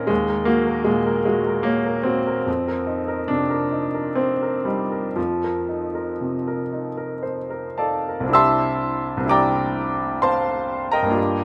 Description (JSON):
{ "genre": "classical, impressionist solo piano", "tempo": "50-78 BPM", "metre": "3/4", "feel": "rubato", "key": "unclear", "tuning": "A4 = 440 Hz", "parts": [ { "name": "clear baby grand piano", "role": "solo", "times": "0.0-11.4 s", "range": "C2 to E6", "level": "-22 LUFS", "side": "equal", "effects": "none" } ], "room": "light reverb", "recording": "close, detailed microphones", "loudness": "-22 LUFS", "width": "mono", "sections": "0.0-8.3 A section; 8.3-11.4 B section", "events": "none", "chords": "0.1 Gb6/Eb; 2.5 F7sus4; 8.3 Cadd9" }